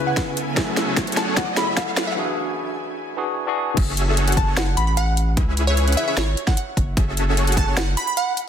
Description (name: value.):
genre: future bass.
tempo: 150 BPM.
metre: 4/4.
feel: half-time.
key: F# minor.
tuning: A4 = 440 Hz.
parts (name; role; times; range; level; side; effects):
glassy wavetable pluck; melody; 0.0-8.3 s; C#5 to B5; -25 LUFS; right 1 dB; chorus, sidechain pumping, dub echo.
barky tine electric piano; accompaniment; 0.0-3.8 s; C#3 to G#5; -26 LUFS; left 1 dB; medium stereo tremolo, sidechain pumping, digital delay.
shimmering ambient pad; sustained chords; 0.0-2.2 s; F#2 to G#5; -32 LUFS; right 1 dB; chorus, built-in reverb, sidechain pumping.
riser; sound effects; 0.0-2.2 s; none; -32 LUFS; equal; none.
electronic kick drum; drums; 0.2-7.7 s; none; -21 LUFS; equal; overdrive.
trap drum kit; drums; 0.2-8.5 s; crash cymbal, hi-hat, snare drum; -25 LUFS; equal; overdrive.
dense compressed supersaw; riff; 0.6-1.4, 3.8-7.8 s; C#4 to F#5; -26 LUFS; equal; sidechain pumping, low-pass filter.
saturated sub bass; bass; 3.8-8.0 s; F#1 to C#2; -21 LUFS; equal; sidechain pumping.
room: light reverb.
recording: dense, heavily limited modern master, high-pass filter.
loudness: -18 LUFS.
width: side -8 dB against mid.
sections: 0.0-3.8 A section; 3.8-8.5 B section.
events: build-up 0.0-3.8; drum fill 0.0-2.2; riser 0.0-2.2; filter sweep 0.0-3.8; break 2.2-3.8; drop 3.8-8.5.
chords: 0.4 F#m9; 2.2 E9; 3.8 F#m9; 5.4 C#m7; 6.8 F#m9.